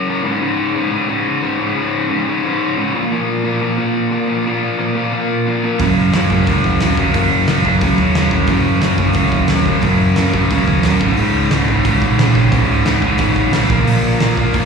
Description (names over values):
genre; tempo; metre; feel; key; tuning
punk rock; 178 BPM; 4/4; straight; Db major; A4 = 440 Hz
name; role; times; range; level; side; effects
distorted electric guitar; riff; 0.0-14.7 s; Db2 to Bb3; -16 LUFS; left 3 dB; distortion, slapback echo
overdriven electric guitar; riff; 5.8-14.7 s; Db2 to Bb3; -18 LUFS; right 13 dB; none
picked electric bass; bass; 5.8-14.7 s; Db1 to Eb2; -18 LUFS; right 1 dB; none
loose indie drum kit; drums; 5.8-14.6 s; hi-hat, kick drum, snare drum; -19 LUFS; right 1 dB; none
room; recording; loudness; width
little or no reverb; live gig heard through the venue's PA, recital hall reverb, studio reverb; -13 LUFS; side -5 dB against mid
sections
0.0-14.7 A section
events
none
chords
0.2 Db5; 2.9 Bb5; 5.8 Gb5; 11.0 Db5; 13.7 Bb5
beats
0.07 | 0.41 0.74 1.08 1.42 | 1.75 2.09 2.43 2.77 | 3.10 3.44 3.78 4.12 | 4.45 4.79 5.13 5.46 | 5.80 6.14 6.47 6.81 | 7.15 7.48 7.82 8.16 | 8.49 8.83 9.17 9.50 | 9.84 10.18 10.51 10.85 | 11.18 11.52 11.86 12.19 | 12.53 12.86 13.20 13.54 | 13.87 14.21 14.54